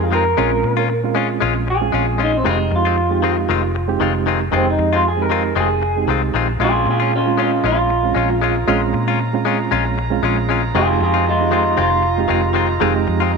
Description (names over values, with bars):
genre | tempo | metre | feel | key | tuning
blues | 116 BPM | 4/4 | swing 54% on 16ths | F minor | A4 = 441 Hz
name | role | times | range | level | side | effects
electric guitar through a small old amp | melody | 0.0-13.3 s | Ab3 to Bb4 | -19 LUFS | right 1 dB | none
reed electric piano | accompaniment | 0.0-13.4 s | Ab3 to G4 | -22 LUFS | right 13 dB | overdrive, fast tremolo
direct-recorded clean electric guitar | stabs | 0.0-13.4 s | Eb3 to F4 | -21 LUFS | left 11 dB | none
vintage muted fingered electric bass | bass | 0.0-13.4 s | F1 to Bb2 | -21 LUFS | left 1 dB | none
clear horn section | sustained chords | 6.6-13.4 s | Bb4 to Bb5 | -28 LUFS | right 6 dB | none
room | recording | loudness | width
moderate echo chamber reverb, RT60 1.9 s, digital ambience | 1960s-style stereo with parts hard left and right | -15 LUFS | side -4 dB against mid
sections
0.0-13.4 A section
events
clean electric guitar solo 0.0-13.4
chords
0.4 Bbm7; 2.5 Fm7; 6.6 Bbm7; 10.8 Fm7